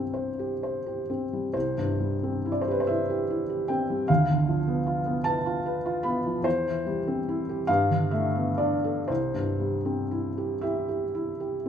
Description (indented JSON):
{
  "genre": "classical, romantic nocturne for solo piano",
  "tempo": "39-52 BPM (dotted quarters)",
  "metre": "12/8",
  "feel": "rubato",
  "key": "C major",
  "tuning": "A4 = 442 Hz",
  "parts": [
    { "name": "felt-muted upright piano", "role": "solo", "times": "0.0-11.7 s", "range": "C2 to B5", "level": "-25 LUFS", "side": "equal", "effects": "none" }
  ],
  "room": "moderate recital hall reverb, RT60 1.5 s",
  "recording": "minimal, uncompressed stereo recording",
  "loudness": "-25 LUFS",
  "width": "side -8 dB against mid",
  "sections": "0.0-11.7 A section",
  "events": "none",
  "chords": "0.0 C; 4.1 Bdim/D; 6.5 C/E; 7.7 Gadd9; 9.1 C"
}